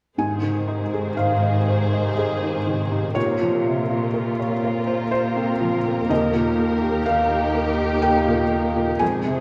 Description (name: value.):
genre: cinematic.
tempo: 61 BPM.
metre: 3/4.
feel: rubato.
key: Ab major.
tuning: A4 = 439 Hz.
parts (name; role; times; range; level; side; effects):
muted chamber violin section; second line; 0.2-9.4 s; F4 to C5; -30 LUFS; equal; none.
felt-muted upright piano; accompaniment; 0.2-9.4 s; Eb2 to Ab5; -25 LUFS; equal; none.
muted studio viola section; accompaniment; 0.2-9.4 s; C3 to Ab4; -29 LUFS; equal; none.
muted studio cello section; bass; 0.2-9.4 s; Eb2 to Bb2; -28 LUFS; equal; none.
room: wet recital hall reverb, RT60 1.5 s.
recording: recorded in a church or concert hall.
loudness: -21 LUFS.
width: mono.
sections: 0.2-9.4 A section.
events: none.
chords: 0.2 Ab; 3.2 Bbmadd9; 6.1 Eb.